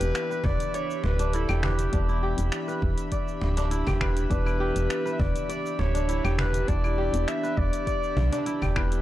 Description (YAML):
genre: organic downtempo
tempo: 101 BPM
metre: 4/4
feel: straight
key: E minor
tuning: A4 = 438 Hz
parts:
  - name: mellow clarinet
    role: melody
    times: 0.0-8.8 s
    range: G4 to E5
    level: -32 LUFS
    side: left 1 dB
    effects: tape echo
  - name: felt-muted upright piano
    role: accompaniment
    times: 0.0-9.0 s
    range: E3 to G4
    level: -36 LUFS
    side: left 4 dB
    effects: sidechain pumping, tape echo
  - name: airy breathy pad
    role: sustained chords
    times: 0.0-9.0 s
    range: D4 to B5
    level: -35 LUFS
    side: right 4 dB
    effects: chorus, sidechain pumping
  - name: kora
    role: arpeggios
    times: 0.0-9.0 s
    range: D4 to D5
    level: -32 LUFS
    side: equal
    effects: tape echo
  - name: woody FM bass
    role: bass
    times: 0.0-9.0 s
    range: D1 to B1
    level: -26 LUFS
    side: equal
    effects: sidechain pumping
  - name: organic electronic drum kit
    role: drums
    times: 0.0-9.0 s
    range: cabasa, claves, finger snaps, hi-hat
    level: -35 LUFS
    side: left 1 dB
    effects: none
  - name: electronic kick drum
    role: drums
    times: 0.4-8.9 s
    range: none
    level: -29 LUFS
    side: equal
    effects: none
  - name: cajon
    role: percussion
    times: 0.4-8.7 s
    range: none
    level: -35 LUFS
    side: equal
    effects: none
room: small room reverb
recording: dry, gritty hardware recording, cassette tape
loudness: -24 LUFS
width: side -14 dB against mid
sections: 0.0-9.0 A section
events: none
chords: 0.0 Em7